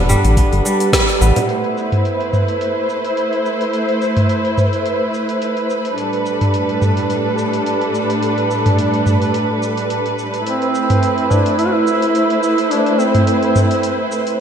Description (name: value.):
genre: organic downtempo.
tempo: 107 BPM.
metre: 4/4.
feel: swing 55% on 16ths.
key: A minor.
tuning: A4 = 439 Hz.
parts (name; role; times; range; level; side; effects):
muted studio string section; sustained chords; 0.0-14.4 s; A2 to C5; -17 LUFS; right 1 dB; sidechain pumping.
kora; arpeggios; 0.0-3.1 s; G3 to B3; -20 LUFS; right 1 dB; ping-pong delay.
round analog bass; bass; 0.0-1.3 s; E1 to A1; -14 LUFS; equal; none.
afro-pop drum kit; drums; 0.1-14.4 s; cabasa, hi-hat, snare drum, toms; -19 LUFS; equal; low-pass filter on hats, small room ambience, low-pass filter on perc, low-pass filter on toms, low-pass filter on snare.
electronic kick drum; drums; 0.4-1.1 s; none; -19 LUFS; equal; small room ambience.
frame drum; percussion; 1.4-1.5 s; none; -23 LUFS; left 1 dB; none.
mellow duduk; melody; 10.5-14.1 s; C4 to F#4; -17 LUFS; right 1 dB; tape echo.
room: wet lush hall reverb, RT60 2.2 s.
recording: dreamy mix soaked in reverb.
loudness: -14 LUFS.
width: side -8 dB against mid.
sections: 0.0-1.5 A section; 1.5-14.4 B section.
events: band accent 0.9.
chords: 0.0 Gadd9; 1.5 Am; 6.0 Gadd9/A; 10.5 Am.